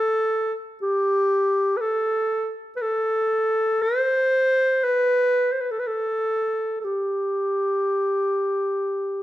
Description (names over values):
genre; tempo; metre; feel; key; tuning
celtic folk; 60 BPM; 4/4; rubato; unclear; A4 = 440 Hz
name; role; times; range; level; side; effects
warm clarinet; solo; 0.0-9.2 s; G4 to C5; -20 LUFS; equal; none
room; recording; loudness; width
light reverb; dark, warm production; -20 LUFS; side -14 dB against mid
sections
0.0-9.2 A section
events
none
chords
none